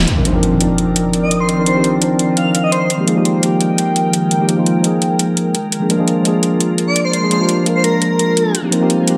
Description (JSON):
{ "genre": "liquid drum and bass", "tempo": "170 BPM", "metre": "4/4", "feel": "straight", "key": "unclear", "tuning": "A4 = 439 Hz", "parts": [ { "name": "mellow tine electric piano", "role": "accompaniment", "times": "0.0-9.2 s", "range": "F3 to C5", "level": "-17 LUFS", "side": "equal", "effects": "low-pass filter" }, { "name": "glassy FM pad", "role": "sustained chords", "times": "0.1-9.2 s", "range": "Eb3 to G5", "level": "-23 LUFS", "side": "equal", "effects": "ensemble chorus, built-in reverb" }, { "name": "electronic hi-hat", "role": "drums", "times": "0.1-9.1 s", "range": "none", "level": "-21 LUFS", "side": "equal", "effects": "small room ambience" }, { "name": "impact", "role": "sound effects", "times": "0.1-1.5 s", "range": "none", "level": "-22 LUFS", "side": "equal", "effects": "none" }, { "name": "airy dreamy lead", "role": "melody", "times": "1.2-2.9, 6.9-8.6 s", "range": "Bb4 to F5", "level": "-21 LUFS", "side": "equal", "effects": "chorus, phaser, digital delay" } ], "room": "wet digital room reverb, RT60 1.2 s", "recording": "none", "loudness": "-15 LUFS", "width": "mono", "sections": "0.1-9.2 A section", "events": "band accent 0.0; impact 0.1-1.5; filter sweep on tine electric piano 0.1-9.2; filter sweep on ambient pad 0.1-9.2", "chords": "0.1 Cm11; 2.9 Fm11; 5.5 Bb7; 8.5 Eb69" }